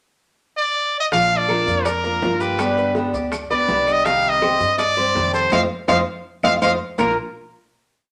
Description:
latin, Cuban son and guajira; 164 BPM; 4/4; straight; Bb major; A4 = 439 Hz
brilliant trumpet; melody; 0.6-7.2 s; Bb4 to F5; -21 LUFS; equal
fingerpicked steel-string acoustic guitar; accompaniment; 1.1-7.1 s; Bb2 to G4; -26 LUFS; equal
Cuban tres; arpeggios; 1.1-7.2 s; Bb3 to F5; -26 LUFS; equal
upright bass; bass; 1.1-7.2 s; Bb1 to G2; -33 LUFS; equal
bongos; percussion; 1.1-7.1 s; -31 LUFS; equal
maracas; percussion; 1.1-7.1 s; -43 LUFS; equal
claves; percussion; 1.5-7.1 s; -36 LUFS; equal
wet studio reverb, RT60 0.8 s; -19 LUFS; mono
0.0-1.1 pickup bar; 1.1-7.0 verse; 7.0-8.1 final chord
band accent 5.5-7.0
0.0 N.C.; 1.1 Bb; 2.6 G; 4.1 Cm; 5.5 F7; 7.0 Bb

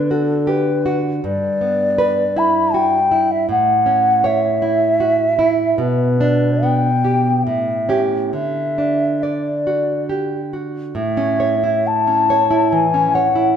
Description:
romantic duo for flute and classical guitar; 64-80 BPM; 3/4; rubato; D major; A4 = 441 Hz
mellow hollow concert flute; melody; 0.0-13.6 s; A4 to B5; -17 LUFS; left 2 dB
nylon-string guitar; accompaniment; 0.0-13.6 s; G2 to D5; -18 LUFS; right 3 dB
wet recital hall reverb, RT60 1.6 s; -15 LUFS; side -8 dB against mid
0.0-11.0 A section; 11.0-13.6 B section
0.0 Bm/D; 1.2 Em7/G; 3.5 A; 5.8 G/B; 7.5 A7; 8.3 D; 11.0 A

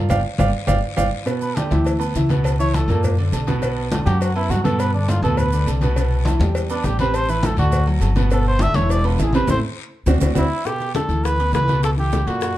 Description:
Afro-Cuban jazz; 204 BPM; 4/4; straight; G major; A4 = 440 Hz
clear concert grand piano; accompaniment; 0.0-12.6 s; Bb2 to B5; -23 LUFS; right 3 dB
upright bass; bass; 0.0-12.6 s; E1 to G2; -20 LUFS; left 1 dB
congas; percussion; 0.1-12.6 s; -25 LUFS; left 2 dB
cowbell and bongos; percussion; 0.1-12.6 s; -30 LUFS; left 4 dB
guiro; percussion; 0.1-12.6 s; -39 LUFS; left 8 dB
maracas; percussion; 0.1-12.6 s; -41 LUFS; right 6 dB
timbales and agogo bells; percussion; 0.1-12.4 s; -33 LUFS; right 4 dB
trumpet with cup mute; melody; 1.4-12.6 s; D4 to E5; -24 LUFS; right 1 dB; plate reverb
light reverb; dark, warm production; -17 LUFS; side -14 dB against mid
0.0-1.3 A section; 1.3-10.7 A section; 10.7-12.6 B section
grand piano solo 0.0-1.3; band accent 0.1-1.3, 9.5-10.7; drum fill 0.4-1.3, 10.1-10.7; muted trumpet solo 1.3-10.7
0.1 G5; 1.3 G6; 2.4 A69/C#; 3.0 F#aug; 3.6 Bm; 4.8 G; 6.0 Cmaj7; 7.1 Am; 7.7 D; 8.3 G6; 8.9 E5; 9.5 Am; 10.1 D9; 10.7 G69; 11.8 C#m7b5

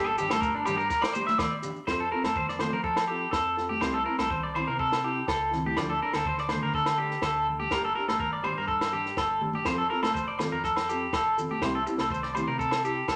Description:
highlife guitar band; 123 BPM; 4/4; straight; F major; A4 = 440 Hz
nylon-string guitar; accompaniment; 0.0-13.0 s; F3 to A4; -37 LUFS; equal
electric guitar at the edge of break-up; arpeggios; 0.0-13.2 s; D4 to E5; -30 LUFS; equal; spring reverb
deep dub fingered electric bass; bass; 0.0-13.2 s; F1 to F3; -41 LUFS; equal
congas; percussion; 0.2-12.5 s; -39 LUFS; equal
maracas; percussion; 0.2-1.8, 9.7-13.2 s; -52 LUFS; equal
compact cocktail drum kit; drums; 0.3-13.2 s; kick drum, snare drum; -37 LUFS; equal
agogo bells; percussion; 0.3-13.2 s; -38 LUFS; equal
wet studio reverb, RT60 0.7 s; -28 LUFS; mono
0.0-1.9 A section; 1.9-13.2 B section
clean electric guitar solo 0.0-1.9
0.0 Gm; 1.9 F; 3.8 C; 5.8 D5; 7.7 Gm; 9.7 F; 11.6 C

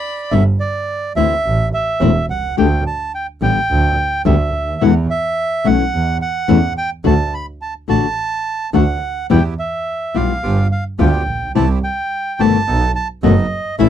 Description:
tango; 107 BPM; 4/4; rubato; G major; A4 = 440 Hz
bandoneon; melody; 0.0-13.9 s; D5 to B5; -20 LUFS; right 3 dB
flamenco guitar; accompaniment; 0.3-13.9 s; B2 to G4; -14 LUFS; left 10 dB
clear double bass; bass; 0.3-13.9 s; E1 to E2; -17 LUFS; right 2 dB
bandoneon; stabs; 9.3-13.9 s; B3 to A4; -25 LUFS; right 7 dB
little or no reverb; dry, close 1970s-style studio recording; -14 LUFS; side -10 dB against mid
0.3-13.9 A section
0.3 G; 1.4 Am; 2.6 Dsus4; 3.7 G5/D; 4.8 E5; 5.9 N.C.; 7.0 D; 9.3 Em; 10.4 G7; 11.6 C; 12.7 B7

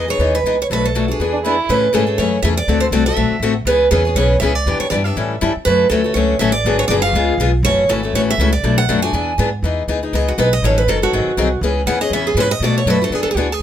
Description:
acoustic string swing (jazz manouche); 242 BPM; 4/4; swing 55% on 8ths; A major, E major from 9.6 s; A4 = 440 Hz
picked steel-string acoustic guitar; melody; 0.0-13.6 s; F#4 to G#5; -18 LUFS; right 3 dB
picked steel-string acoustic guitar; accompaniment; 0.0-13.5 s; B2 to A4; -18 LUFS; left 5 dB
upright bass; bass; 0.0-13.6 s; F#1 to B2; -20 LUFS; equal
dark violin; second line; 1.3-1.7 s; D4 to E4; -20 LUFS; right 4 dB
light reverb; minimal, uncompressed stereo recording; -14 LUFS; side -10 dB against mid
0.0-1.7 A section; 1.7-9.6 B section; 9.6-13.6 C section
steel-string acoustic guitar solo 9.6-13.6
0.0 Emaj7; 0.7 Bm7; 1.2 E7; 1.7 Amaj7; 2.7 D9; 3.7 C#m7; 4.7 Em7; 5.2 A7; 5.7 Dmaj7; 6.7 G#m7b5; 7.2 C#7; 7.6 F#m7; 8.6 Bm7; 9.1 E7; 9.6 Emaj7; 10.6 D#m7b5; 11.1 G#7; 11.6 C#m7; 12.6 Bm7; 13.1 E7

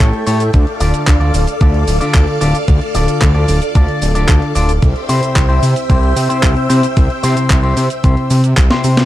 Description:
italo disco; 112 BPM; 4/4; straight; A4 = 440 Hz
string machine, full ensemble; sustained chords; 0.0-9.1 s; A4 to E6; -21 LUFS; equal; phaser, ensemble chorus
electric guitar with an envelope filter; stabs; 0.0-9.1 s; C3 to D5; -18 LUFS; left 2 dB; ping-pong delay
fat analog bass; bass; 0.0-9.1 s; D1 to C3; -14 LUFS; equal
clean 12-bit digital drum machine; drums; 0.0-9.1 s; cabasa, handclaps, hi-hat, snare drum; -20 LUFS; equal
electronic kick drum; drums; 0.0-8.7 s; -11 LUFS; equal
light reverb; dark, warm production; -10 LUFS; side -14 dB against mid
0.0-9.1 A section
drum fill 8.7-9.1
0.0 A7; 0.5 Dm; 4.8 C

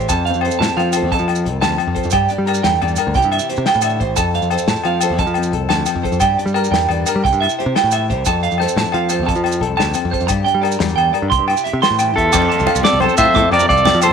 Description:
highlife guitar band; 118 BPM (dotted quarters); 12/8; straight; F major; A4 = 440 Hz
nylon-string guitar; accompaniment; 0.0-14.1 s; F2 to Bb4; -23 LUFS; left 10 dB
clean electric guitar; arpeggios; 0.0-14.1 s; Bb4 to D6; -19 LUFS; right 11 dB; slapback echo
modern bright picked electric bass; bass; 0.0-14.1 s; A1 to G3; -20 LUFS; equal
maracas; percussion; 0.0-14.1 s; -26 LUFS; right 12 dB
warm soul drum kit; drums; 0.1-14.1 s; crash cymbal, hi-hat, kick drum, snare drum; -23 LUFS; left 3 dB
agogo bells; percussion; 0.1-14.1 s; -23 LUFS; left 14 dB
electric guitar at the edge of break-up; melody; 12.2-14.1 s; A4 to E5; -14 LUFS; right 1 dB
growling trumpet; second line; 12.2-14.1 s; F4 to C5; -23 LUFS; right 10 dB
congas; percussion; 12.3-14.1 s; -24 LUFS; right 13 dB
moderate plate reverb, RT60 1.7 s, small room ambience; 1960s-style stereo with parts hard left and right; -14 LUFS; side -6 dB against mid
0.0-12.3 A section; 12.3-14.1 B section
0.1 F; 2.1 Gm; 3.1 C; 4.2 F; 6.2 Gm; 7.2 C; 8.2 F; 10.3 Gm; 11.3 C; 12.3 F

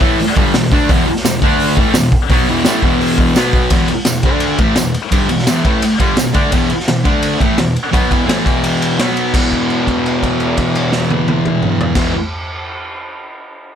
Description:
garage rock duo or trio; 170 BPM; 4/4; straight; E minor; A4 = 439 Hz
thick fuzz guitar; riff; 0.0-12.1 s; E2 to D4; -14 LUFS; equal; distortion
raw garage drum kit; drums; 0.0-12.0 s; crash cymbal, hi-hat, kick drum, ride cymbal, snare drum, toms; -16 LUFS; equal
tambourine; percussion; 1.3-6.3 s; -24 LUFS; right 5 dB
light reverb; -12 LUFS; side -8 dB against mid
0.0-3.7 A section; 3.7-9.4 B section; 9.4-12.2 C section
held note 9.4-12.0
0.0 Em; 1.4 D5; 1.8 E5; 3.4 B5; 3.7 E5; 4.2 D5; 4.6 Em; 7.1 D5; 7.4 E5; 9.0 B5; 9.4 E5

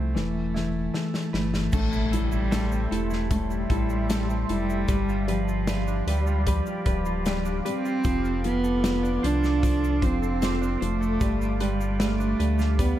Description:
pop ballad; 76 BPM; 4/4; straight; A minor; A4 = 440 Hz
dark cello; melody; 0.0-13.0 s; F3 to D4; -28 LUFS; right 2 dB; digital delay
dark upright piano; accompaniment; 0.0-13.0 s; E3 to E4; -31 LUFS; left 6 dB
direct-recorded clean electric guitar; arpeggios; 0.0-13.0 s; A2 to C5; -36 LUFS; right 7 dB; spring reverb
sub bass with octave; bass; 0.0-12.9 s; D1 to D2; -27 LUFS; equal
natural country drum kit; drums; 0.2-13.0 s; crash cymbal, hi-hat, kick drum, snare drum; -29 LUFS; equal
shimmering ambient pad; sustained chords; 2.6-13.0 s; G4 to D6; -36 LUFS; left 1 dB; chorus, built-in reverb, phaser
egg shaker; percussion; 1.7-13.0 s; -48 LUFS; left 9 dB
impact; sound effects; 1.7-4.9 s; -37 LUFS; equal
light reverb, small room reverb; dark, warm production; -23 LUFS; side -12 dB against mid
0.0-1.7 A section; 1.7-13.0 B section
drum fill 0.2-1.7; impact 1.7-4.9
0.2 Esus4; 1.7 Am7; 4.9 G7; 8.0 F6; 11.2 G7

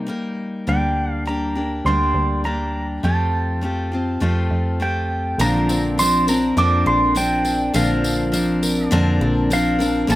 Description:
acoustic folk duo or small band; 102 BPM; 4/4; straight; Bb major; A4 = 440 Hz
pedal steel guitar; melody; 0.0-10.2 s; F5 to D6; -22 LUFS; right 2 dB
picked steel-string acoustic guitar; accompaniment; 0.0-10.2 s; Bb2 to Bb4; -21 LUFS; left 2 dB
metallic FM bass; bass; 0.7-10.2 s; Bb1 to F2; -23 LUFS; equal
picked twelve-string acoustic guitar; arpeggios; 5.4-10.2 s; F3 to Bb4; -25 LUFS; right 2 dB
tambourine; percussion; 5.4-10.2 s; -29 LUFS; left 3 dB
little or no reverb; recorded outdoors, with no room sound; -17 LUFS; side -16 dB against mid
0.0-5.4 A section; 5.4-10.2 B section
0.0 Cm7; 0.7 Gm/D; 3.0 Fadd9; 5.4 Bbadd9

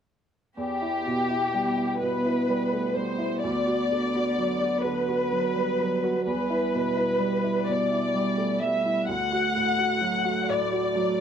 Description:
neoclassical piano and strings; 42 BPM (dotted quarters); 6/8; rubato; E minor; A4 = 440 Hz
muted chamber violin section; melody; 0.6-11.2 s; G4 to F#5; -26 LUFS; left 1 dB
muted cello; second line; 0.6-11.2 s; G3 to B3; -32 LUFS; right 2 dB
clear baby grand piano; accompaniment; 0.6-11.2 s; D2 to F#4; -28 LUFS; right 2 dB
light reverb; band playing live in one room; -23 LUFS; side -8 dB against mid
0.6-11.2 A section
0.6 Em; 3.4 Bm/D; 6.3 Em; 9.1 D

